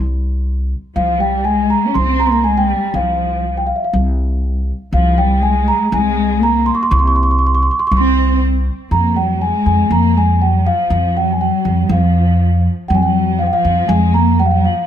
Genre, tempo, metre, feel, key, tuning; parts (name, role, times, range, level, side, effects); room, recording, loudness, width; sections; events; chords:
Arabic maqam ensemble; 121 BPM; 4/4; straight; C maqam hijaz; A4 = 440 Hz
upright bass; bass; 0.0-14.7 s; C2 to F2; -16 LUFS; equal
large celesta; melody; 1.0-14.9 s; E5 to Db6+25c; -17 LUFS; right 1 dB
dark studio cello section; second line; 1.0-14.9 s; F3 to Db4+25c; -18 LUFS; equal
light reverb; close, detailed microphones; -12 LUFS; side -9 dB against mid
0.0-8.9 A section; 8.9-14.9 B section